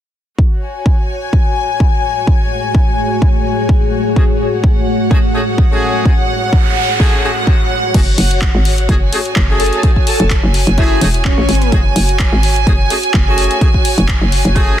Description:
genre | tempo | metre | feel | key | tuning
bass house | 127 BPM | 4/4 | swing 55% on 16ths | F# minor | A4 = 440 Hz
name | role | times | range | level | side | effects
deep dark ambient pad | sustained chords | 2.1-7.9 s | A3 to G#4 | -20 LUFS | left 2 dB | chorus, built-in reverb, sidechain pumping
electronic kick drum | drums | 0.4-14.7 s | none | -12 LUFS | equal | none
warm chamber string section | texture | 0.4-14.8 s | F#4 to G#5 | -19 LUFS | equal | sidechain pumping
bright horn section | stabs | 4.2-14.8 s | A3 to G#4 | -21 LUFS | equal | sidechain pumping, digital delay
noise sweep | sound effects | 6.4-7.9 s | none | -22 LUFS | right 3 dB | none
hollow knocking FM bass | bass | 7.9-14.8 s | E1 to A1 | -14 LUFS | equal | sidechain pumping
house drum kit | drums | 7.9-14.7 s | crash cymbal, handclaps, hi-hat | -21 LUFS | left 2 dB | none
airy dreamy lead | melody | 9.6-11.7 s | C#4 to A4 | -19 LUFS | left 2 dB | chorus, digital delay
room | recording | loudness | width
light reverb | dense, heavily limited modern master | -11 LUFS | side -11 dB against mid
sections
0.4-7.9 A section; 7.9-14.8 B section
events
noise sweep 6.4-7.9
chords
0.4 F#madd9

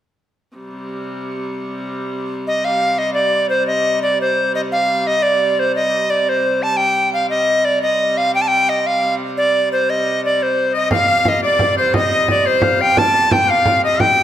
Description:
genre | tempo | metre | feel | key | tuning
medieval dance | 116 BPM (dotted quarters) | 6/8 | straight | C dorian | A4 = 438 Hz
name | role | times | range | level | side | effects
clear hurdy-gurdy | drone | 0.6-14.2 s | C3 to G3 | -26 LUFS | equal | none
bright reedy tenor recorder | melody | 2.5-14.2 s | C5 to A5 | -15 LUFS | equal | none
edgy shawm | second line | 10.7-14.2 s | C5 to A5 | -18 LUFS | left 5 dB | none
frame drum | percussion | 10.9-14.2 s | none | -20 LUFS | right 2 dB | none
room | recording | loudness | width
moderate recital hall reverb, RT60 1.7 s | none | -14 LUFS | side -11 dB against mid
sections
0.6-2.6 A section; 2.6-10.9 B section; 10.9-14.2 B section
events
none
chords
none

